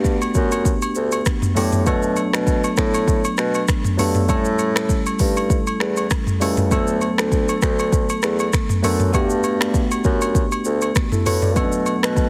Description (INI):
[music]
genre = afrobeats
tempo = 99 BPM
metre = 4/4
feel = swing 55% on 16ths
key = unclear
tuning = A4 = 440 Hz
[part]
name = tine electric piano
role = accompaniment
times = 0.0-12.3 s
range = F#3 to D5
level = -25 LUFS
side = equal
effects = subtle chorus
[part]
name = warm bassoon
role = bass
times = 0.0-12.3 s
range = C#2 to B2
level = -25 LUFS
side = equal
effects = none
[part]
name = afro-pop drum kit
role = drums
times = 0.0-12.3 s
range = finger snaps, hi-hat, kick drum, rim click, shaker, toms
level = -22 LUFS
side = equal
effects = none
[part]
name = agogo bells and woodblock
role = percussion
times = 0.2-12.0 s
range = none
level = -31 LUFS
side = equal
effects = none
[sound]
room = light reverb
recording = heavily compressed radio sound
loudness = -19 LUFS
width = mono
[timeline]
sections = 0.0-12.3 A section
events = none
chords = 0.0 Gmaj9; 1.9 Bm7; 4.3 A7; 6.7 D6; 9.1 Gmaj9; 11.6 Bm7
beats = 0.05 0.65 1.26 | 1.86 2.47 3.08 3.68 | 4.29 4.89 5.50 6.11 | 6.71 7.32 7.93 8.53 | 9.14 9.74 10.35 10.96 | 11.56 12.17